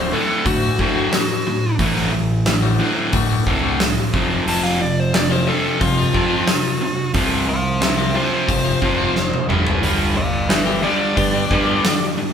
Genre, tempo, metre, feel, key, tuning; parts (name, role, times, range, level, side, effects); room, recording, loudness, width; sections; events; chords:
quiet-loud alternative rock; 90 BPM; 4/4; straight; A4 = 445 Hz
dark smooth lead guitar; melody; 0.0-12.1 s; F4 to A5; -23 LUFS; left 2 dB; overdrive
electric guitar at the edge of break-up; arpeggios; 0.0-12.0 s; A2 to G4; -26 LUFS; left 6 dB
overdriven electric guitar; riff; 0.0-12.3 s; D2 to G3; -20 LUFS; equal
fuzz picked electric bass; bass; 0.0-11.8 s; D1 to G2; -24 LUFS; equal; overdrive
huge arena drum kit; drums; 0.5-12.0 s; hi-hat, kick drum, snare drum, toms; -21 LUFS; equal
moderate large studio reverb, RT60 1.2 s; band playing live in one room; -16 LUFS; side -8 dB against mid
0.0-12.3 A section
lead electric guitar solo 0.0-12.3; drum fill 9.2-9.8
0.0 D; 4.1 Fsus2; 9.5 G